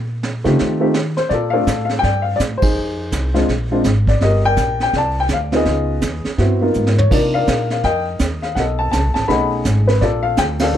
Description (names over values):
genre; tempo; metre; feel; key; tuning
jazz piano trio; 165 BPM; 4/4; swing 63% on 8ths; Bb major; A4 = 441 Hz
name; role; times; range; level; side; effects
upright bass; bass; 0.0-10.8 s; G1 to Db3; -19 LUFS; equal; none
vintage brush drum kit; drums; 0.2-10.8 s; brushed snare drum, crash cymbal, hi-hat, kick drum, ride cymbal, snare drum, toms; -22 LUFS; right 2 dB; none
dark upright piano; melody; 0.4-10.8 s; Ab3 to B5; -18 LUFS; left 2 dB; plate reverb
room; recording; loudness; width
light reverb; dark, warm production; -15 LUFS; side -10 dB against mid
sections
0.0-1.3 A section; 1.3-10.8 B section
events
upright bass solo 0.0-1.3; band accent 2.6, 10.6; drum fill 6.7-7.1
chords
0.0 Cm7; 0.6 F9; 1.3 Bbmaj7; 2.8 Fm7; 3.5 Bb7; 4.2 Ebmaj7; 5.7 Db13; 7.1 Cm11; 8.6 B13; 10.0 Bbmaj7